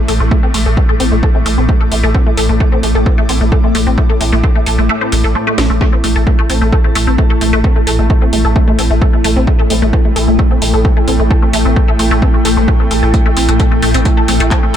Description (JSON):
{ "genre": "driving peak-time techno", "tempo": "131 BPM", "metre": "4/4", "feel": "straight", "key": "unclear", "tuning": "A4 = 445 Hz", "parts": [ { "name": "resonant blip pluck", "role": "riff", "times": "0.0-14.8 s", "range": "A3 to A4", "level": "-17 LUFS", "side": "equal", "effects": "wide subtle chorus, sidechain pumping, tape echo" }, { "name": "swarming drone", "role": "drone", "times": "0.0-14.8 s", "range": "A2 to A3", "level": "-19 LUFS", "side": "left 2 dB", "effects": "built-in reverb, sidechain pumping" }, { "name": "airy breathy pad", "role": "texture", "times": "0.0-14.8 s", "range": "E4 to D6", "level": "-22 LUFS", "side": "right 1 dB", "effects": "chorus, sidechain pumping" }, { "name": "saturated sub bass", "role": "bass", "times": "0.1-14.8 s", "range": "A1", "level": "-14 LUFS", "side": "equal", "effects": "tube saturation, sidechain pumping, low-pass filter" }, { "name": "techno drum kit", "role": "drums", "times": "0.1-14.8 s", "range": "handclaps, hi-hat, snare drum", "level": "-20 LUFS", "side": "left 1 dB", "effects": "tape echo" }, { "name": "electronic kick drum", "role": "drums", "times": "0.3-14.6 s", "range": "none", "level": "-12 LUFS", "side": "equal", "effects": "none" } ], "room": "light reverb, digital ambience", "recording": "echo-heavy mix", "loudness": "-9 LUFS", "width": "side -10 dB against mid", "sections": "0.0-14.8 A section", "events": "fade-in on analog synth pad 0.0-14.8; kick drops out 4.9-5.8; drum fill 5.6", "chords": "0.0 A5" }